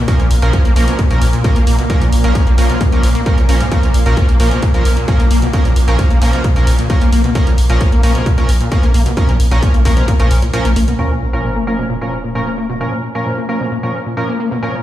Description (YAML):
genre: driving peak-time techno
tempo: 132 BPM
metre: 4/4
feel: straight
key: Bb phrygian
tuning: A4 = 440 Hz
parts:
  - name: overdriven acid bass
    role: riff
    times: 0.0-14.8 s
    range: Ab2 to Db4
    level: -20 LUFS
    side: left 1 dB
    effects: distortion, analog chorus, sidechain pumping, digital delay
  - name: swarming drone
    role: drone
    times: 0.0-11.0 s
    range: Bb2 to Bb3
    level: -23 LUFS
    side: equal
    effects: built-in reverb, sidechain pumping
  - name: sync-sweep polysynth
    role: stabs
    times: 0.1-14.7 s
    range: F3 to Bb4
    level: -21 LUFS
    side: right 2 dB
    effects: chorus, cassette tape, sidechain pumping, digital delay
  - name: electronic hi-hat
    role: drums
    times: 0.1-11.0 s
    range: none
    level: -28 LUFS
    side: left 1 dB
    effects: overdrive, sidechain pumping on hats, low-pass filter on hats, small room reverb
  - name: electronic kick drum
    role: drums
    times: 0.1-10.2 s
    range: none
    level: -13 LUFS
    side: equal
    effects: overdrive, small room reverb
  - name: saturated sub bass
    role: bass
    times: 0.2-10.9 s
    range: Bb1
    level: -14 LUFS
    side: equal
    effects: tube saturation, sidechain pumping, low-pass filter
  - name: sub drop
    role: sound effects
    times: 11.0-12.8 s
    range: none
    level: -22 LUFS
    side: equal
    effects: none
room: little or no reverb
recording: played on a big sound system in a bare room, stone room reverb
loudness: -11 LUFS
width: side -13 dB against mid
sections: 0.0-11.0 A section; 11.0-14.8 B section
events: drop 0.0-11.0; kick drops out 10.5-11.0; impact 11.0-12.8; filter sweep on acid bass 11.0-14.8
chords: 0.0 Bbm